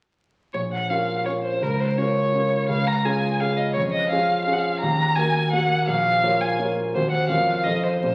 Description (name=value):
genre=quick classical-period movement for piano trio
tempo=168 BPM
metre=3/4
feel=straight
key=Bb minor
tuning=A4 = 440 Hz
part: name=warm violin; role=melody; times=0.5-8.1 s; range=Bb4 to Bb5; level=-25 LUFS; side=equal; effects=none
part: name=warm concert grand piano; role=accompaniment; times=0.5-8.1 s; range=Bb1 to Db5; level=-26 LUFS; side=equal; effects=none
room=wet recital hall reverb, RT60 1.8 s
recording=very old 78 rpm record, vinyl crackle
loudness=-22 LUFS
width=mono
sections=0.5-8.1 A section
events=none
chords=0.5 Bbm; 1.6 Bbm/Db; 2.7 Db; 3.8 Db/F; 4.8 Ebm; 5.9 Bbm; 6.9 Cdim/Eb; 7.3 Bbm/F; 7.7 F7